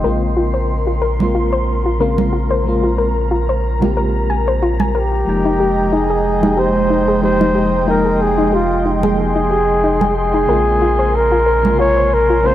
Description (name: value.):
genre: sunset chillout.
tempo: 92 BPM.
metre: 4/4.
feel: swing 54% on 16ths.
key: unclear.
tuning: A4 = 439 Hz.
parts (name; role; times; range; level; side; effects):
mellow FM electric piano; accompaniment; 0.0-12.5 s; C3 to G5; -22 LUFS; equal; chorus, tremolo, auto-pan, tape echo.
airy breathy pad; sustained chords; 0.0-12.5 s; Ab3 to C6; -21 LUFS; equal; chorus.
soft round pluck; arpeggios; 0.0-12.5 s; Eb4 to Ab5; -21 LUFS; left 3 dB; chorus, tape echo.
round analog bass; bass; 0.0-12.5 s; F1 to Bb1; -20 LUFS; equal; tube saturation.
congas; percussion; 1.2-11.8 s; none; -20 LUFS; right 4 dB; none.
breathy flugelhorn; melody; 5.0-12.5 s; F4 to Db5; -16 LUFS; equal; vintage 12-bit sampler grit, tape echo.
room: light reverb, studio reverb.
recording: none.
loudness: -13 LUFS.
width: side -12 dB against mid.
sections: 0.0-12.5 A section.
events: none.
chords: 0.1 Bbm9; 5.3 Fm11; 10.5 Bbm9.